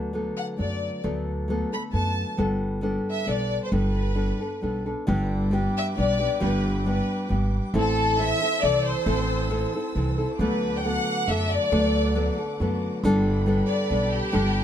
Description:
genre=mexican folk, mariachi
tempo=136 BPM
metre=3/4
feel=swing 53% on 8ths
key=G major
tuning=A4 = 436 Hz
part: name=nylon-string guitar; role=accompaniment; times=0.0-14.6 s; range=G2 to A4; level=-26 LUFS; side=left 1 dB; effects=none
part: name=upright bass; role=bass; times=0.0-14.6 s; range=G1 to F#2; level=-27 LUFS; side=right 1 dB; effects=none
part: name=rich studio violin section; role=melody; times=0.4-14.6 s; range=G4 to B5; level=-27 LUFS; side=left 2 dB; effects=none
part: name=rich studio violin section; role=sustained chords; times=5.1-14.6 s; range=A4 to E6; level=-37 LUFS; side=equal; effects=none
room=moderate studio reverb, RT60 0.7 s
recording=dark, warm production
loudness=-22 LUFS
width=side -10 dB against mid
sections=0.0-5.1 A section; 5.1-14.6 A section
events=none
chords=0.0 D6; 2.4 Gadd9; 5.1 G; 7.7 Am; 10.4 D6; 13.0 Gadd9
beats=0.14 0.59 | 1.04 1.49 1.94 | 2.39 2.83 3.28 | 3.73 4.17 4.62 | 5.08 5.52 5.97 | 6.41 6.85 7.29 | 7.73 8.17 8.62 | 9.05 9.50 9.94 | 10.38 10.82 11.27 | 11.71 12.15 12.59 | 13.02 13.46 13.90 | 14.34

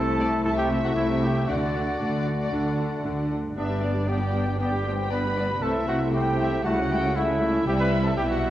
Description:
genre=quick classical-period movement for symphony orchestra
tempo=117 BPM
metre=4/4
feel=straight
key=unclear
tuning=A4 = 440 Hz
part: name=muted studio violin section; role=melody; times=0.0-8.5 s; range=B4 to A5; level=-36 LUFS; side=left 3 dB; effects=none
part: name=mellow flute section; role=second line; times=0.0-8.5 s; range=D5 to E5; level=-36 LUFS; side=left 1 dB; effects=none
part: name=muted studio violin section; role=second line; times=0.0-8.5 s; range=D5 to B5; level=-34 LUFS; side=left 1 dB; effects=none
part: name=warm clarinet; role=second line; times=0.0-8.5 s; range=G3 to D4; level=-31 LUFS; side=left 2 dB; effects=none
part: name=warm French horn section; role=sustained chords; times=0.0-8.5 s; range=G3 to E4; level=-30 LUFS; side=left 2 dB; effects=none
part: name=warm trumpet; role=stabs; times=0.0-8.5 s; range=D4 to B4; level=-29 LUFS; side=right 1 dB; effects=none
part: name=muted studio cello section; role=bass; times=0.0-8.5 s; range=G2 to D3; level=-30 LUFS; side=right 1 dB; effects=none
part: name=muted studio double bass section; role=bass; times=0.0-8.5 s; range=G1 to D2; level=-30 LUFS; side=right 2 dB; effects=none
part: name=muted studio viola section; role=accompaniment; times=0.2-8.5 s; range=G3 to G4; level=-33 LUFS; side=right 1 dB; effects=none
room=wet scoring stage reverb, RT60 1.7 s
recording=worn, warbling old tape, cassette tape, warbly pitch drift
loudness=-22 LUFS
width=side -13 dB against mid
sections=0.0-8.5 A section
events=none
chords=0.0 Am/C; 1.5 D; 3.6 G; 5.6 Am/C; 6.6 A7/C#; 7.7 C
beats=0.45 0.96 | 1.48 2.00 2.52 3.04 | 3.57 4.08 4.60 5.11 | 5.62 6.13 6.64 7.15 | 7.66 8.17

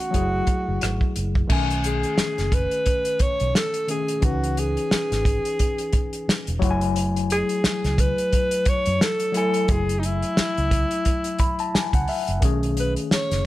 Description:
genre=lush 1970s-style soul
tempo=88 BPM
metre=4/4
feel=swing 58% on 16ths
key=F# dorian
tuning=A4 = 440 Hz
part: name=breathy alto saxophone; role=melody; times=0.0-13.5 s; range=D#4 to C#5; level=-25 LUFS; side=equal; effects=none
part: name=mellow tine electric piano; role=accompaniment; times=0.0-13.5 s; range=D#3 to B5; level=-27 LUFS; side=left 3 dB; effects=medium stereo tremolo
part: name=warm soul drum kit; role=drums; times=0.0-13.4 s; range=crash cymbal, hi-hat, kick drum, rim click, snare drum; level=-23 LUFS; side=equal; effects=none
part: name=vintage muted fingered electric bass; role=bass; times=0.1-13.5 s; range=E1 to F#2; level=-26 LUFS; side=equal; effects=none
room=small room ambience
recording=none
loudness=-20 LUFS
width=side -16 dB against mid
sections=0.0-1.5 A section; 1.5-13.5 B section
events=tine electric piano fill 11.1-12.4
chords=0.1 F#m9; 1.5 B13; 4.2 C#m9; 6.6 F#m9; 12.4 B13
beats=0.14 0.82 | 1.50 2.19 2.87 3.55 | 4.23 4.92 5.60 6.28 | 6.96 7.64 8.33 9.01 | 9.69 10.38 11.06 11.74 | 12.42 13.11

